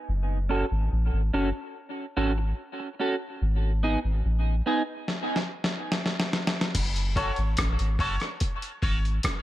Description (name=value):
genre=dub reggae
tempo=72 BPM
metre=4/4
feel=straight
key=F# dorian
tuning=A4 = 444 Hz
part: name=soft dub sub bass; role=bass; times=0.1-9.2 s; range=F#1 to A1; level=-25 LUFS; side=equal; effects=none
part: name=clean electric guitar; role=accompaniment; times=0.5-9.1 s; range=B3 to A4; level=-30 LUFS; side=right 2 dB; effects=analog chorus, high-pass filter, low-pass filter, tape echo
part: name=dusty soul sampler-style drum kit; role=drums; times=5.1-9.4 s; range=crash cymbal, hi-hat, kick drum, rim click, snare drum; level=-27 LUFS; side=equal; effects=overdrive
part: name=bright upright piano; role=stabs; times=7.2-9.0 s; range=C#4 to C#5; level=-33 LUFS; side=left 2 dB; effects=high-pass filter, tape echo
room=light reverb, digital ambience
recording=echo-heavy mix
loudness=-25 LUFS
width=side -15 dB against mid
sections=0.0-6.7 A section; 6.7-9.4 B section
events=filter sweep 3.4-9.4; drum fill 5.1-6.7; stop 5.1-6.7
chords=0.1 F#m; 3.4 N.C.; 6.7 F#m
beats=| 0.08 0.91 1.74 2.58 | 3.41 4.24 5.08 5.91 | 6.74 7.58 8.41 9.24